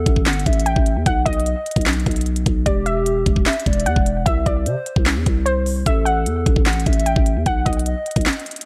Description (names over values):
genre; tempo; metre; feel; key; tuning
hip hop, trap; 150 BPM; 4/4; half-time; unclear; A4 = 440 Hz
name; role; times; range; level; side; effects
warbly dusty pluck; melody; 0.0-8.7 s; C5 to G5; -27 LUFS; equal; chorus, phaser, low-pass filter, delay
hollow clarinet-like synth lead; second line; 0.0-8.2 s; G4 to F#5; -28 LUFS; equal; chorus, delay
growling 808-style bass; bass; 0.0-8.3 s; E1 to C3; -23 LUFS; equal; none
trap drum kit; drums; 0.1-8.7 s; handclaps, hi-hat, kick drum, snare drum; -21 LUFS; equal; none
room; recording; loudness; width
digital ambience; none; -19 LUFS; mono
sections
0.0-8.7 A section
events
kick muted 8.3-8.7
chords
0.0 A5; 1.1 B; 2.7 Em7; 4.3 N.C.; 5.9 A5; 7.5 B